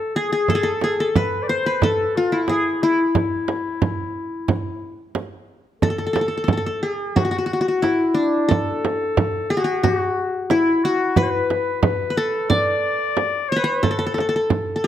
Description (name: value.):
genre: Arabic maqam ensemble.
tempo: 90 BPM.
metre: 4/4.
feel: straight.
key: E maqam hijaz, A maqam rast from 5.8 s.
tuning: A4 = 441 Hz.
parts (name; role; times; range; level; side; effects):
qanun; melody; 0.0-14.9 s; D4 to D5; -20 LUFS; left 1 dB; none.
warm clarinet; second line; 0.0-14.9 s; E4 to D5; -26 LUFS; left 5 dB; none.
frame drum; percussion; 0.5-14.7 s; none; -22 LUFS; right 4 dB; none.
room: light reverb.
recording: close, detailed microphones.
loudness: -18 LUFS.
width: side -11 dB against mid.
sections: 0.0-5.8 A section; 5.8-14.9 B section.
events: none.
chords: none.